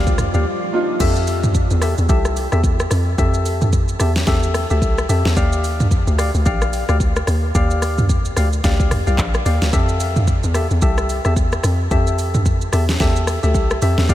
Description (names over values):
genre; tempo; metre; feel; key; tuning
amapiano; 110 BPM; 4/4; swing 58% on 16ths; F major; A4 = 442 Hz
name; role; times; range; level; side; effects
warm baby grand piano; accompaniment; 0.0-1.0 s; F3 to Bb4; -26 LUFS; right 1 dB; lush chorus
lush unison pad; sustained chords; 0.0-1.0 s; F3 to D5; -31 LUFS; left 1 dB; none
percussive organ stab; stabs; 0.0-14.1 s; G4 to F5; -23 LUFS; left 2 dB; chorus, diffuse ambient delay
hollow log drum bass; bass; 0.0-14.1 s; Bb1 to F2; -18 LUFS; equal; none
deep house drum kit; drums; 0.1-14.1 s; crash cymbal, handclaps, hi-hat, kick drum, rim click, shaker, snare drum, toms; -19 LUFS; equal; none
room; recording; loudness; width
light reverb, digital ambience; none; -15 LUFS; side -13 dB against mid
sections
0.0-1.0 A section; 1.0-14.1 B section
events
break 0.5-1.0; drop 1.0-14.1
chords
0.0 Ebmaj9; 1.0 Fmaj9; 5.4 Ebmaj9; 9.7 Fmaj9